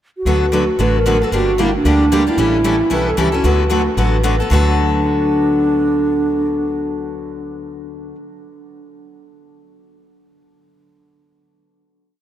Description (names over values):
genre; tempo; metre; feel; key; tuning
acoustic string swing (jazz manouche); 226 BPM; 4/4; swing 57% on 8ths; D major; A4 = 440 Hz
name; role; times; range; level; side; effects
mellow hollow alto flute; melody; 0.2-7.4 s; D4 to B4; -18 LUFS; right 1 dB; none
picked steel-string acoustic guitar; accompaniment; 0.3-8.2 s; D3 to A4; -20 LUFS; left 4 dB; none
picked steel-string acoustic guitar; accompaniment; 0.3-8.2 s; D3 to B4; -24 LUFS; right 5 dB; none
upright bass; bass; 0.3-8.1 s; G1 to D2; -19 LUFS; equal; none
room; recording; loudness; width
moderate cathedral reverb, RT60 6.7 s; in a vast, echoing space; -13 LUFS; side -11 dB against mid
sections
0.0-0.3 pickup bar; 0.3-4.5 A section; 4.5-6.7 final chord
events
none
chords
0.3 D6; 1.3 Gm; 2.4 A7; 3.4 D6